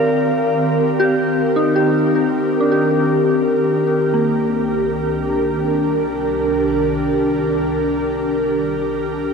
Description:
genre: ambient.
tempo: free time.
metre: none.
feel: none.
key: unclear.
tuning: A4 = 435 Hz.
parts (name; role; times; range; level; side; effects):
ethereal airy pad; sustained chords; 0.0-9.3 s; C2 to Bb4; -17 LUFS; equal; ensemble chorus, built-in reverb.
soft synth bell; arpeggios; 0.0-9.3 s; Bb3 to F5; -20 LUFS; left 2 dB; chorus, phaser, ping-pong delay.
room: wet huge ambient reverb, RT60 7.5 s.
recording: cassette tape.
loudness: -15 LUFS.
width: side -5 dB against mid.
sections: 0.0-9.3 A section.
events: none.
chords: 0.0 Cm7; 4.1 Ebmaj7/C.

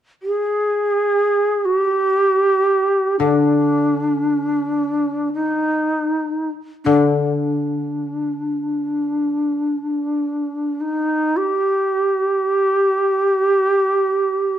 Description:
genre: japanese traditional, Japanese chamber music.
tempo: free time.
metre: none.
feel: none.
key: unclear.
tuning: A4 = 436 Hz.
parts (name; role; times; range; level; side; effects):
breathy shakuhachi; melody; 0.2-14.6 s; D4 to Ab4; -17 LUFS; equal; none.
koto; accompaniment; 3.2-10.2 s; D3; -20 LUFS; left 5 dB; none.
room: moderate recital hall reverb, RT60 1.3 s.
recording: dark, warm production.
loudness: -17 LUFS.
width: side -10 dB against mid.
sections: 0.0-14.6 A section.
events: none.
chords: none.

